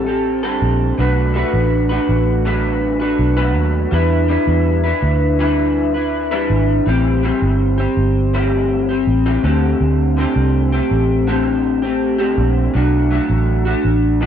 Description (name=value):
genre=indie pop, bedroom pop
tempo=82 BPM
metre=4/4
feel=straight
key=E minor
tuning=A4 = 443 Hz
part: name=electric guitar through a small old amp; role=accompaniment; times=0.0-14.3 s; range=A2 to B4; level=-16 LUFS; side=left 1 dB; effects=analog chorus, vibrato effect
part: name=vintage muted fingered electric bass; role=bass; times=0.0-14.3 s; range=G1 to E2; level=-17 LUFS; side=equal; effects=none
room=little or no reverb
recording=dry, close 1970s-style studio recording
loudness=-14 LUFS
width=side -9 dB against mid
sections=0.0-14.3 A section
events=none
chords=0.0 D7sus4; 1.0 Bm7; 3.9 Em7; 6.9 Am7; 9.4 D7sus4; 12.7 Bm7